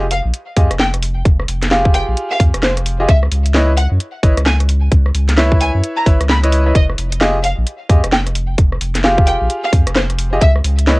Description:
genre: UK garage, two-step garage.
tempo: 131 BPM.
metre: 4/4.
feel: swing 62% on 16ths.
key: F minor.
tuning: A4 = 439 Hz.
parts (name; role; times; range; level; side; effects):
clear concert grand piano; stabs; 0.0-11.0 s; Fb4 to F5; -19 LUFS; equal; low-pass filter, cassette tape, tape echo.
saturated sub bass; bass; 0.0-11.0 s; F1 to Gb2; -16 LUFS; equal; sidechain pumping.
dark studio violin section; melody; 0.1-10.5 s; C5 to Cb6; -20 LUFS; equal; cassette tape, tape echo.
garage drum kit; drums; 0.1-11.0 s; hi-hat, rim click, snare drum; -18 LUFS; equal; cassette tape.
electronic kick drum; drums; 0.6-10.5 s; none; -12 LUFS; equal; cassette tape.
room: light reverb.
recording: home recording on cassette.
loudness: -12 LUFS.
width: side -23 dB against mid.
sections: 0.0-11.0 A section.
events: none.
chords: 0.0 Fmadd9; 3.1 Dbm9; 6.8 Fmadd9; 10.4 Dbm9.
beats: 0.34 0.80 | 1.25 1.71 2.17 2.63 | 3.09 3.54 4.00 4.46 | 4.92 5.38 5.83 6.29 | 6.75 7.21 7.67 8.12 | 8.58 9.04 9.50 9.96 | 10.41 10.87.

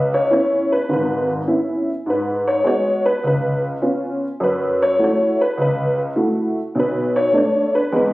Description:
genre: solo jazz.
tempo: 102 BPM.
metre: 4/4.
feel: swing 68% on 8ths.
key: C# minor.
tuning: A4 = 440 Hz.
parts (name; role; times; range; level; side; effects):
honky-tonk upright piano; solo; 0.0-8.1 s; G#1 to C#5; -16 LUFS; equal; none.
room: light reverb.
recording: recorded on a phone in the room, club reverb.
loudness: -16 LUFS.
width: side -18 dB against mid.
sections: 0.0-8.1 A section.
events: honky-tonk piano solo 0.0-8.1.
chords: 0.0 C#m7; 2.1 G#madd11; 3.2 C#7; 4.4 F#m7; 6.7 Bm7.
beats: 0.31 0.89 1.48 | 2.06 2.65 3.23 3.82 | 4.40 4.99 5.57 6.16 | 6.74 7.33 7.91.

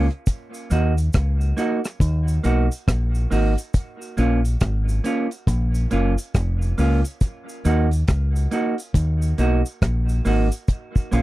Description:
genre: roots reggae.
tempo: 69 BPM.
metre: 4/4.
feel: swing 62% on 16ths.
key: Eb minor.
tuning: A4 = 440 Hz.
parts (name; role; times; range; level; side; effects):
semi-hollow electric guitar; accompaniment; 0.0-11.2 s; Bb3 to Gb4; -25 LUFS; right 2 dB; dub echo.
deep dub fingered electric bass; bass; 0.0-11.2 s; F1 to Eb2; -19 LUFS; equal; none.
deep reggae drum kit; drums; 0.1-11.2 s; hi-hat, kick drum, rim click; -19 LUFS; equal; none.
cabasa; percussion; 0.3-11.2 s; none; -41 LUFS; right 1 dB; none.
room: little or no reverb.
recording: dry, close 1970s-style studio recording.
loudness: -19 LUFS.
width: side -17 dB against mid.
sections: 0.0-11.2 A section.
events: none.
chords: 0.3 Ebm; 3.7 Bbm; 7.2 Ebm; 10.7 Bbm.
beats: | 0.27 1.14 2.00 2.87 | 3.74 4.61 5.48 6.34 | 7.21 8.08 8.95 9.82 | 10.68.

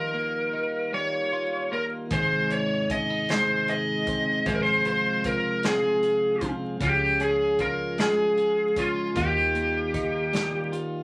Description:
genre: six-eight pop ballad.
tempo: 51 BPM (dotted quarters).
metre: 6/8.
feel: straight.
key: unclear.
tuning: A4 = 445 Hz.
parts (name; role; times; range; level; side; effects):
lead guitar through a small cranked amp; melody; 0.0-10.7 s; F4 to Eb5; -27 LUFS; equal; overdrive.
twelve-string electric guitar; accompaniment; 0.0-11.0 s; Ab2 to Ab4; -34 LUFS; equal; spring reverb.
mellow tonewheel organ; sustained chords; 0.0-11.0 s; C3 to F4; -37 LUFS; equal; slow rotary speaker.
vintage muted fingered electric bass; bass; 2.1-11.0 s; Ab1 to Eb2; -36 LUFS; equal; none.
natural country drum kit; drums; 2.1-10.9 s; hi-hat, kick drum, snare drum; -35 LUFS; equal; none.
room: wet club reverb, RT60 0.6 s.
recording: vinyl crackle.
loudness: -25 LUFS.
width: mono.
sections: 0.0-11.0 A section.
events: none.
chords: 0.0 Ebadd9; 2.1 Ab; 4.5 Fm/Ab; 6.8 Db; 9.2 Ebadd9.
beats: 0.92 | 2.11 3.29 | 4.46 5.63 | 6.80 7.98 | 9.15 10.33.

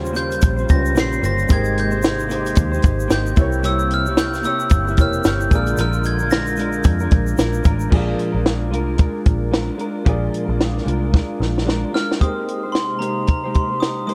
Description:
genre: indie pop, bedroom pop.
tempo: 112 BPM.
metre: 4/4.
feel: swing 60% on 16ths.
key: unclear.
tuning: A4 = 439 Hz.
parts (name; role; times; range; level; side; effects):
clean electric guitar; accompaniment; 0.0-14.1 s; Bb2 to Db5; -27 LUFS; equal; analog chorus, vibrato effect.
warm upright piano; accompaniment; 0.0-14.1 s; G3 to D5; -32 LUFS; equal; cassette tape.
hollow soft pad; sustained chords; 0.0-7.9, 12.2-14.1 s; C3 to C5; -33 LUFS; equal; ensemble chorus.
vintage muted picked electric bass; bass; 0.0-11.8 s; E1 to F2; -24 LUFS; equal; none.
egg shaker; percussion; 0.1-7.9 s; none; -43 LUFS; equal; none.
glockenspiel with brass mallets; melody; 0.2-7.6, 11.9-14.1 s; Bb5 to C7; -27 LUFS; equal; subtle chorus, analog delay.
compact cocktail drum kit; drums; 0.2-14.1 s; crash cymbal, hi-hat, kick drum, snare drum; -20 LUFS; equal; none.
room: light reverb, studio ambience.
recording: none.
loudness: -19 LUFS.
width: mono.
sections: 0.0-7.9 A section; 7.9-12.2 B section; 12.2-14.1 C section.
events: drum fill 11.1-12.2.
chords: 0.0 Eb13; 1.5 Abmaj9; 3.4 C7b9; 5.5 Bb7; 12.2 Abmaj9.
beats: 0.43 0.96 | 1.50 2.03 2.57 3.10 | 3.64 4.17 4.71 5.25 | 5.78 6.32 6.85 7.39 | 7.92 8.46 8.99 9.53 | 10.06 10.60 11.13 11.67 | 12.20 12.74 13.28 13.81.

